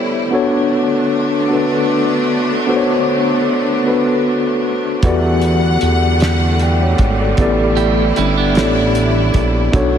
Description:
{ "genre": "slow six-eight R&B", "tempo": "51 BPM (dotted quarters)", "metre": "6/8", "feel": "straight", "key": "B minor", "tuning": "A4 = 440 Hz", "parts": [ { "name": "mellow tine electric piano", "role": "accompaniment", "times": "0.0-10.0 s", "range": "B3 to G5", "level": "-16 LUFS", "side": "left 2 dB", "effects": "medium stereo tremolo" }, { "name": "clear studio string section", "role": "sustained chords", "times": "0.0-10.0 s", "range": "D3 to F#5", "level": "-20 LUFS", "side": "right 1 dB", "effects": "none" }, { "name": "fat analog bass", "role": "bass", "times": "5.0-10.0 s", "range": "G1 to E2", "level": "-16 LUFS", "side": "right 1 dB", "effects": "none" }, { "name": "cloth-damped thuddy drum kit", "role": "drums", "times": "5.0-9.9 s", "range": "hi-hat, kick drum, snare drum", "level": "-18 LUFS", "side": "right 1 dB", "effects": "none" }, { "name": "clean electric guitar", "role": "second line", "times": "7.8-9.5 s", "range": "B3 to G4", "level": "-21 LUFS", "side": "right 9 dB", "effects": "diffuse ambient delay" } ], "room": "moderate lush hall reverb, RT60 2.6 s", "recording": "dreamy mix soaked in reverb", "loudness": "-12 LUFS", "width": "side -8 dB against mid", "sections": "0.0-10.0 A section", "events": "none", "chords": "0.3 Bm9; 5.0 Em11; 7.4 A7sus4" }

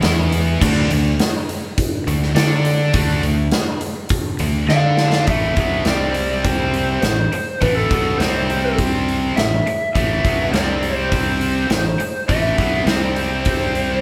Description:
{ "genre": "hard rock", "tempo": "103 BPM", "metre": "4/4", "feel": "straight", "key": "A minor", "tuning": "A4 = 440 Hz", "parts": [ { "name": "scooped high-gain guitar", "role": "riff", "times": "0.0-14.0 s", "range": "A2 to D5", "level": "-28 LUFS", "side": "equal", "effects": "distortion" }, { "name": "tight distorted guitar", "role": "riff", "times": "0.0-14.0 s", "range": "A2 to D5", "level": "-26 LUFS", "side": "equal", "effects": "distortion" }, { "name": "fuzz fingered electric bass", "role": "bass", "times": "0.0-14.0 s", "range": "A1 to D3", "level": "-23 LUFS", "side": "equal", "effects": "overdrive" }, { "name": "big rock drum kit", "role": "drums", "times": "0.0-13.9 s", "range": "crash cymbal, hi-hat, kick drum, snare drum", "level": "-23 LUFS", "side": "equal", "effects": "none" }, { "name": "lead guitar through a small cranked amp", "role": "melody", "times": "4.7-14.0 s", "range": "A4 to F5", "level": "-24 LUFS", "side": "equal", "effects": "overdrive" } ], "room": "moderate large studio reverb, RT60 1.1 s", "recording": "band playing live in one room", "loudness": "-18 LUFS", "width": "mono", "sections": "0.0-5.3 A section; 5.3-14.0 B section", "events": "drum fill 4.7-5.3", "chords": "0.0 E5; 0.6 D5; 5.3 A5; 5.9 C5; 7.0 Am; 8.2 C5; 9.4 A5; 10.5 C5; 11.7 Am; 12.9 C5" }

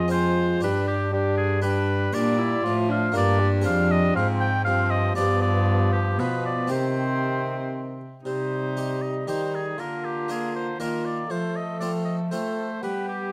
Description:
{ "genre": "classical, renaissance-style consort dance", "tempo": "118 BPM", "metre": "3/4", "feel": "straight", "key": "C harmonic minor, C minor from 8.2 s", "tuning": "A4 = 441 Hz", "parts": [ { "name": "clear oboe", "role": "melody", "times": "0.0-13.3 s", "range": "G4 to G5", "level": "-31 LUFS", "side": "equal", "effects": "none" }, { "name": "warm viola", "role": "second line", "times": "0.0-13.3 s", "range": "B3 to A4", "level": "-33 LUFS", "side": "equal", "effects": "none" }, { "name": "harpsichord", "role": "accompaniment", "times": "0.0-13.3 s", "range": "F2 to Bb4", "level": "-35 LUFS", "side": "equal", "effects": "none" }, { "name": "warm bassoon", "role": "accompaniment", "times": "0.0-13.3 s", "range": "Eb3 to B3", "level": "-32 LUFS", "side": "equal", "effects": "none" }, { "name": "rich cello", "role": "bass", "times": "0.0-13.3 s", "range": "F2 to A3", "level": "-28 LUFS", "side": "equal", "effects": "none" } ], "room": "moderate stone room reverb, RT60 1.3 s", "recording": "close, detailed microphones", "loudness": "-24 LUFS", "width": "mono", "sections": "0.0-8.2 A section; 8.2-13.3 B section", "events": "none", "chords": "0.0 Fm; 0.6 G; 2.1 Bb; 3.7 Fm; 5.2 G7; 6.7 Cm; 9.8 Bb/D; 11.3 F; 12.8 G" }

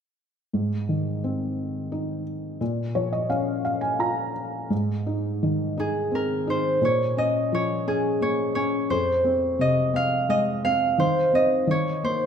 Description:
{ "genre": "children's music, lullaby", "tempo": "86 BPM", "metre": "3/4", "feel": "rubato", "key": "Ab major", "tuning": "A4 = 440 Hz", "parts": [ { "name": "felt-muted upright piano", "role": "accompaniment", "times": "0.5-12.3 s", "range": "F2 to Bb5", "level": "-25 LUFS", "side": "left 1 dB", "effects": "none" }, { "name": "concert harp", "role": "melody", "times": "5.8-12.3 s", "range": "Ab4 to F5", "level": "-22 LUFS", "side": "right 1 dB", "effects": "none" } ], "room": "moderate scoring stage reverb, RT60 1.6 s", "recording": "minimal, uncompressed stereo recording", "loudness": "-22 LUFS", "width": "side -7 dB against mid", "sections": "0.5-4.7 A section; 4.7-12.3 B section", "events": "felt piano fill 2.6-4.7", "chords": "0.5 Ab; 2.6 Bbm; 4.7 Ab; 6.8 Bbm; 8.9 Fm; 11.0 Cm/Eb; 11.7 Eb5" }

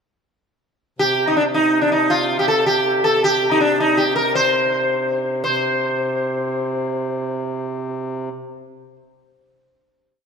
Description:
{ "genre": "medieval dance", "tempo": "105-120 BPM (dotted quarters)", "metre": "6/8", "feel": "straight", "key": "C dorian", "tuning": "A4 = 440 Hz", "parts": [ { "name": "sitar", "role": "melody", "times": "1.0-9.0 s", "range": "D4 to C5", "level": "-17 LUFS", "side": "equal", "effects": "tape echo" }, { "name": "pedal harmonium", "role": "drone", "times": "1.0-8.3 s", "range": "C3", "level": "-26 LUFS", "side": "right 1 dB", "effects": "none" } ], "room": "moderate scoring stage reverb, RT60 1.8 s", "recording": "none", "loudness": "-17 LUFS", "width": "side -6 dB against mid", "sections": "1.0-5.4 A section; 5.4-7.5 final note", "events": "speeding up 1.0-7.5", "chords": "none" }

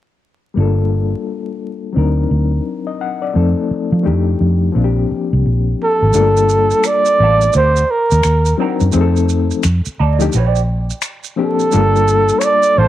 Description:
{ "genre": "R&B, neo-soul", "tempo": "86 BPM", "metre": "4/4", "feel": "swing 62% on 16ths", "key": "G minor", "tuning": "A4 = 441 Hz", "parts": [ { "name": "overdriven reed electric piano", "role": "accompaniment", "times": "0.5-12.9 s", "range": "F3 to F#5", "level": "-18 LUFS", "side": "left 7 dB", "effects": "fast tremolo" }, { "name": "vintage muted fingered electric bass", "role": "bass", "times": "0.6-12.9 s", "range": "G1 to F3", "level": "-14 LUFS", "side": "equal", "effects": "none" }, { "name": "breathy flugelhorn", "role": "melody", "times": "5.8-12.9 s", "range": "A4 to D5", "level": "-13 LUFS", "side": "right 2 dB", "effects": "none" }, { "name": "maracas and finger snaps", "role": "percussion", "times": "6.1-12.8 s", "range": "none", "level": "-25 LUFS", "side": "right 1 dB", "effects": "none" }, { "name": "electric guitar through a small old amp", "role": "second line", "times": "7.2-12.9 s", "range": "Bb3 to D5", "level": "-23 LUFS", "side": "right 10 dB", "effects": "wah, vibrato effect" } ], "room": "light reverb, small room reverb", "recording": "1960s-style stereo with parts hard left and right, vinyl crackle", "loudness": "-12 LUFS", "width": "side -13 dB against mid", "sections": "0.6-6.1 A section; 6.1-12.9 B section", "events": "none", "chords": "0.6 Gm9; 2.0 D7b9b13; 3.4 F7; 4.0 F13; 4.7 Bb69; 6.1 Gm9; 7.5 D7b9b13; 8.9 F7; 9.6 F13; 10.3 Bb69; 11.7 Gm9" }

